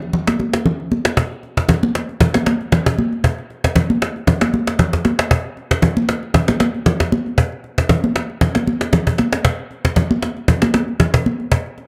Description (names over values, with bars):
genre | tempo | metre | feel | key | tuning
amapiano | 116 BPM | 4/4 | swing 55% on 16ths | none | none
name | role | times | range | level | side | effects
cajon | drums | 0.0-11.8 s | none | -20 LUFS | equal | none
congas | percussion | 0.1-11.4 s | none | -20 LUFS | equal | none
room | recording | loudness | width
moderate plate reverb, RT60 1.6 s, studio ambience | dark, warm production | -18 LUFS | mono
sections
0.0-1.2 A section; 1.2-11.9 B section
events
none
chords
none